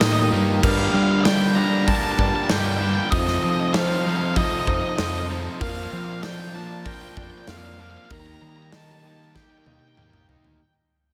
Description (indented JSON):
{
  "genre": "post-rock",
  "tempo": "96 BPM",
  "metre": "4/4",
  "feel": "straight",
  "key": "unclear",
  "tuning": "A4 = 440 Hz",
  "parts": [
    { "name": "octave-fuzz lead guitar", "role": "melody", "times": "0.0-10.3 s", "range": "Eb5 to Bb5", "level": "-30 LUFS", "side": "equal", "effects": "distortion, digital delay" },
    { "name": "dark studio string section", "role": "sustained chords", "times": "0.0-10.6 s", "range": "D4 to G5", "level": "-40 LUFS", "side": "equal", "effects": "none" },
    { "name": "felt-muted upright piano", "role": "arpeggios", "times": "0.0-10.3 s", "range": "Bb4 to Eb5", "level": "-38 LUFS", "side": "equal", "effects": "none" },
    { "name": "twangy electric guitar", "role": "arpeggios", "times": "0.0-10.6 s", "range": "G2 to Bb4", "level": "-35 LUFS", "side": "equal", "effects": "none" },
    { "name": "crunchy overdriven guitar", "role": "riff", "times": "0.0-10.6 s", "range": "Eb3 to A4", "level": "-32 LUFS", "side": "equal", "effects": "none" },
    { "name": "overdriven electric guitar", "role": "riff", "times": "0.0-10.6 s", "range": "F2 to Eb4", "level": "-32 LUFS", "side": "equal", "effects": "none" },
    { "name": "growling fingered electric bass", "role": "bass", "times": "0.0-10.6 s", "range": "Bb1 to G3", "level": "-27 LUFS", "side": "equal", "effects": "overdrive" },
    { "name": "big rock drum kit", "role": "drums", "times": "0.0-10.6 s", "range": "crash cymbal, hi-hat, kick drum, snare drum, toms", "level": "-28 LUFS", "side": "equal", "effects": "none" }
  ],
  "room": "light reverb, studio reverb",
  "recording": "none",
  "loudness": "-22 LUFS",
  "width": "mono",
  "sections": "0.0-10.6 A section",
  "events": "fade-out 0.0-10.6; drum fill 9.4-10.6",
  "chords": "0.0 Eb; 0.6 Gm7; 3.1 F5; 5.6 Bbadd9/F; 8.1 Eb"
}